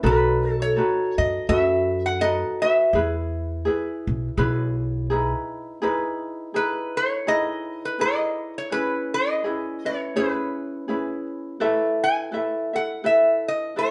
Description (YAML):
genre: Hawaiian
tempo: 83 BPM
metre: 4/4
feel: swing 58% on 8ths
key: E major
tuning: A4 = 440 Hz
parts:
  - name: ukulele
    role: accompaniment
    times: 0.0-13.9 s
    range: C#4 to E5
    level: -27 LUFS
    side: equal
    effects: none
  - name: upright bass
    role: bass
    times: 0.0-5.3 s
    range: B1 to F#2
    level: -28 LUFS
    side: equal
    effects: none
  - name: metal-body resonator slide guitar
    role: melody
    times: 0.1-13.9 s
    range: B4 to G#5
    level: -25 LUFS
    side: equal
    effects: none
room: moderate studio reverb, RT60 0.7 s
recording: band playing live in one room, nothing above 10.7 kHz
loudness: -24 LUFS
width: mono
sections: 0.0-5.8 A section; 5.8-13.9 B section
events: none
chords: 0.0 B7; 2.9 Emaj7; 8.7 C#m7; 11.6 Asus2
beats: | 0.04 0.76 1.49 2.21 | 2.93 3.66 4.38 5.10 | 5.82 6.55 7.27 7.99 | 8.71 9.44 10.16 10.88 | 11.60 12.32 13.04 13.77